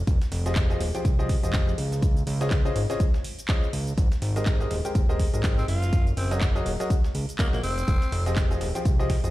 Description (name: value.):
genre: piano house.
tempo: 123 BPM.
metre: 4/4.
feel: swing 58% on 16ths.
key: unclear.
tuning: A4 = 440 Hz.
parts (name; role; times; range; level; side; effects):
fat analog bass; bass; 0.0-9.3 s; Eb1 to Db2; -27 LUFS; equal; sidechain pumping.
breakbeat sampler-style drum kit; drums; 0.1-9.3 s; hi-hat, snare drum; -43 LUFS; equal; sidechain pumping on hats, high-pass filter on hats, high-pass filter on snare.
electronic kick drum; drums; 0.1-9.2 s; none; -23 LUFS; equal; none.
house drum kit; drums; 0.1-9.3 s; cabasa, handclaps, hi-hat; -36 LUFS; right 1 dB; none.
clear upright piano; riff; 0.5-9.3 s; Db3 to G5; -30 LUFS; left 1 dB; sidechain pumping, digital delay.
growling tenor saxophone; melody; 5.6-8.3 s; Bb3 to F4; -32 LUFS; equal; digital delay.
room: little or no reverb.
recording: played on a big sound system in a bare room, stone room reverb.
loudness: -22 LUFS.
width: side -16 dB against mid.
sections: 0.0-9.3 A section.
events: none.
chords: 0.0 Fm9; 2.0 Dbmaj9; 4.0 Abmaj9; 5.7 Gb69; 7.6 Fm9.